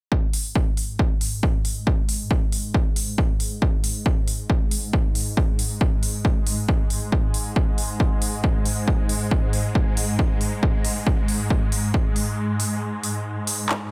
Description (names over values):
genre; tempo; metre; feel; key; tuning
driving peak-time techno; 137 BPM; 4/4; straight; unclear; A4 = 441 Hz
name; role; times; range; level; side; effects
swarming drone; drone; 0.5-13.9 s; G#2 to G#3; -30 LUFS; equal; built-in reverb, sidechain pumping
electronic kick drum; drums; 0.1-12.0 s; none; -24 LUFS; equal; none
techno drum kit; drums; 0.3-13.8 s; handclaps, hi-hat; -30 LUFS; equal; sidechain pumping on hats
room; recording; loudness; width
little or no reverb; none; -23 LUFS; mono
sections
0.1-13.9 A section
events
break 12.4-13.9; drum fill 13.7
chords
none